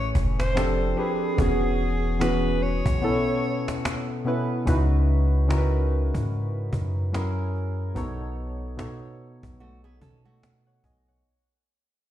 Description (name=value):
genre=contemporary R&B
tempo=73 BPM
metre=4/4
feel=swing 58% on 16ths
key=unclear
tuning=A4 = 440 Hz
part: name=warm alto saxophone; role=melody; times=0.0-4.3 s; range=G#4 to C#5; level=-29 LUFS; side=right 3 dB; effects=digital delay
part: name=soft electric-piano-like synth keys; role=accompaniment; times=0.0-11.5 s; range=A2 to G#5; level=-27 LUFS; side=left 2 dB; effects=chorus
part: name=long sustained 808-style bass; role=bass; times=0.0-11.2 s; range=E1 to B2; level=-25 LUFS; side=equal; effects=none
part: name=mallet-like synth pluck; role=texture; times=0.0-3.4 s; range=D#4 to E4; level=-38 LUFS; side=right 2 dB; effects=none
part: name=cajon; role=drums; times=0.2-11.1 s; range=none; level=-29 LUFS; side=equal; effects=vintage 12-bit sampler grit
part: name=nylon-string guitar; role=arpeggios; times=9.6-11.2 s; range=A3 to A4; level=-59 LUFS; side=right 4 dB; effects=none
room=small room ambience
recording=played on a big sound system in a bare room, stone room reverb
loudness=-22 LUFS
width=side -12 dB against mid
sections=0.0-4.7 A section; 4.7-11.2 B section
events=break 3.0-4.7; fade-out 4.7-11.2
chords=0.0 Amaj9; 0.6 F6; 1.4 E6; 3.0 B9sus4; 4.7 C#m11; 7.1 F#9; 8.0 B7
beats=0.56 | 1.38 2.21 3.03 3.85 | 4.67 5.49 6.32 7.14 | 7.96 8.78 9.60 10.43